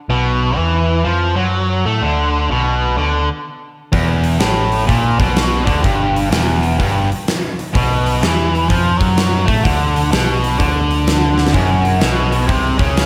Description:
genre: blues rock power trio and southern rock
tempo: 126 BPM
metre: 4/4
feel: swing 64% on 8ths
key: unclear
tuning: A4 = 440 Hz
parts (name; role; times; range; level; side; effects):
- distorted electric guitar; riff; 0.1-13.1 s; E2 to A3; -19 LUFS; equal; overdrive
- overdriven picked electric bass; bass; 0.1-13.1 s; E1 to A2; -21 LUFS; equal; none
- huge arena drum kit; drums; 3.9-13.1 s; hi-hat, kick drum, snare drum; -20 LUFS; equal; none
- overdriven tonewheel organ; sustained chords; 11.6-13.1 s; E4 to C#5; -30 LUFS; equal; slow rotary speaker, chorus vibrato
room: moderate scoring stage reverb, RT60 1.8 s, studio reverb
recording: big arena sound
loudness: -16 LUFS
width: mono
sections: 0.0-13.1 A section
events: drum fill 11.3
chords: 0.0 B5; 3.9 E5; 7.7 B5; 11.5 F#7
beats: | 0.10 0.58 1.06 1.54 | 2.02 2.50 2.98 3.45 | 3.93 4.41 4.89 5.36 | 5.84 6.32 6.79 7.27 | 7.74 8.22 8.70 9.17 | 9.64 10.12 10.59 11.07 | 11.54 12.02 12.49 12.96

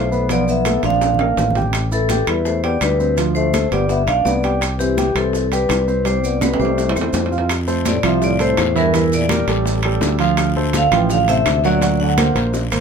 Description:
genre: Afro-Cuban jazz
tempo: 167 BPM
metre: 4/4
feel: straight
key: C major, F major from 7.5 s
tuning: A4 = 439 Hz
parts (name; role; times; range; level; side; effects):
- vibraphone with medium hard mallets; melody; 0.0-12.3 s; G4 to G5; -20 LUFS; left 1 dB; none
- breathy trombone; second line; 0.0-12.3 s; G2 to D4; -24 LUFS; left 5 dB; slapback echo
- dark concert grand piano; accompaniment; 0.0-12.8 s; E3 to G5; -21 LUFS; right 5 dB; none
- modern bright fingered electric bass; bass; 0.0-12.8 s; G1 to F2; -20 LUFS; equal; none
- congas; percussion; 0.1-12.8 s; none; -28 LUFS; equal; none
- maracas; percussion; 0.1-12.8 s; none; -33 LUFS; right 6 dB; none
- bongos; percussion; 0.3-12.6 s; none; -29 LUFS; left 7 dB; none
- timbales; percussion; 0.3-12.8 s; none; -26 LUFS; right 6 dB; none
- claves; percussion; 0.7-12.8 s; none; -29 LUFS; left 3 dB; none
- guiro; percussion; 7.5-12.8 s; none; -31 LUFS; left 7 dB; none
room: light reverb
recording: none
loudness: -15 LUFS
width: side -6 dB against mid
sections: 0.0-7.5 A section; 7.5-12.8 B section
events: drum fill 0.7-1.7, 6.4-7.5, 12.5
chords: 0.3 Dm69; 1.0 Bb; 1.7 Am9; 3.2 Dm7; 3.9 G; 4.6 Cmaj7; 6.8 C6; 7.5 F; 8.9 Em7b5; 9.7 Dmadd11/A; 10.4 Dm7; 11.8 Daug7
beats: | 0.30 0.66 1.02 1.38 | 1.74 2.10 2.46 2.82 | 3.18 3.54 3.90 4.26 | 4.62 4.98 5.34 5.70 | 6.06 6.42 6.78 7.14 | 7.50 7.86 8.22 8.58 | 8.94 9.30 9.66 10.02 | 10.38 10.74 11.10 11.46 | 11.82 12.18 12.54

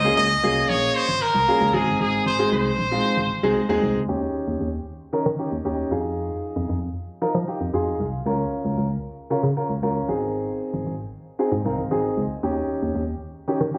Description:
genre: dance-pop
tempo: 115 BPM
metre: 4/4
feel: straight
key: unclear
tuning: A4 = 440 Hz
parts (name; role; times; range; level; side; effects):
- clear trumpet; melody; 0.0-3.8 s; Ab4 to Eb5; -23 LUFS; equal; tape echo
- warm baby grand piano; accompaniment; 0.0-13.8 s; Ab3 to C6; -26 LUFS; equal; none
- organ-like FM bass; bass; 0.0-13.7 s; G1 to F3; -28 LUFS; equal; none
room: light reverb, small room ambience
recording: recorded on a phone in the room, studio reverb, compression, low-pass filter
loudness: -24 LUFS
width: mono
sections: 0.0-4.1 A section; 4.1-13.8 B section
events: filter sweep 4.1-13.8; grand piano fill 7.5-8.3, 11.4-12.4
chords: 0.0 Db6; 1.7 Ab; 4.1 Eb7; 5.9 Fm7; 8.3 Db6; 10.1 Ab; 12.4 Eb7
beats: 0.43 0.95 1.48 | 2.00 2.52 3.04 3.56 | 4.08 4.61 5.13 5.65 | 6.17 6.69 7.22 7.74 | 8.26 8.78 9.30 9.82 | 10.35 10.87 11.39 11.91 | 12.43 12.96 13.48

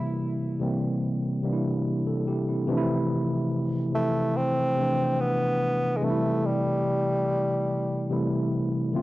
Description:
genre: R&B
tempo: 72 BPM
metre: 4/4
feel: straight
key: unclear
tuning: A4 = 438 Hz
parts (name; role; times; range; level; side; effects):
- warm bassoon; melody; 0.0-8.1 s; G3 to E4; -27 LUFS; equal; none
- mellow tine electric piano; accompaniment; 0.0-9.0 s; C3 to A4; -25 LUFS; equal; medium stereo tremolo
room: light reverb, small room ambience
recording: dry, gritty hardware recording, nothing above 10.5 kHz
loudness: -24 LUFS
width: side -17 dB against mid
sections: 0.0-2.7 A section; 2.7-9.0 B section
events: none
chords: 0.0 C7; 2.7 Fmaj7; 6.0 Am7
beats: 0.19 1.03 1.86 | 2.69 3.53 4.36 5.19 | 6.03 6.86 7.69 8.53

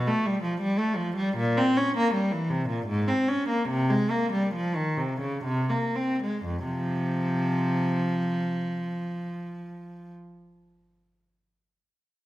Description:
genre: classical, baroque-style suite movement for unaccompanied cello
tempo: 57-85 BPM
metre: 3/4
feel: rubato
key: F minor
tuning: A4 = 440 Hz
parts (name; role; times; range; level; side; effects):
- rich cello; solo; 0.0-10.1 s; F2 to Db4; -25 LUFS; equal; none
room: wet recital hall reverb, RT60 1.4 s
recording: faint mains hum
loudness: -24 LUFS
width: side -15 dB against mid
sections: 0.0-6.5 A section; 6.5-9.4 B section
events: slowing down 0.3-6.5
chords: 0.0 G7(no3); 1.4 C7/Bb; 2.9 Abadd9; 3.7 Fm/C; 5.4 Abadd9/C; 6.5 F5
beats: 0.61 | 1.37 2.14 2.90 | 3.70 4.54 5.45 | 6.46 7.42 8.39

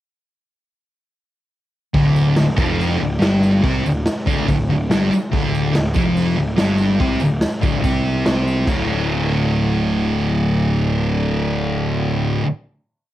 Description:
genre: garage rock duo or trio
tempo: 143 BPM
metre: 4/4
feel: straight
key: D minor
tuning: A4 = 437 Hz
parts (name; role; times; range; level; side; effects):
- thick fuzz guitar; riff; 1.9-12.4 s; D2 to C4; -17 LUFS; equal; distortion, cassette tape
- fuzz picked electric bass; bass; 1.9-12.4 s; D1 to C2; -23 LUFS; equal; overdrive, tube saturation
- raw garage drum kit; drums; 1.9-9.4 s; crash cymbal, hi-hat, kick drum, rim click, snare drum; -22 LUFS; equal; cassette tape
- tambourine; percussion; 2.2-8.9 s; none; -43 LUFS; right 7 dB; none
room: light reverb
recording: home recording on cassette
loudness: -16 LUFS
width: side -13 dB against mid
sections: 1.9-8.7 riff; 8.7-12.0 final chord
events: none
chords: 1.9 Dm; 8.7 D5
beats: | 1.94 2.37 2.79 3.22 | 3.64 4.06 4.49 4.91 | 5.33 5.75 6.17 6.59 | 7.00 7.42 7.84 8.26 | 8.68 9.10 9.52 9.93 | 10.35 10.77 11.20 11.62

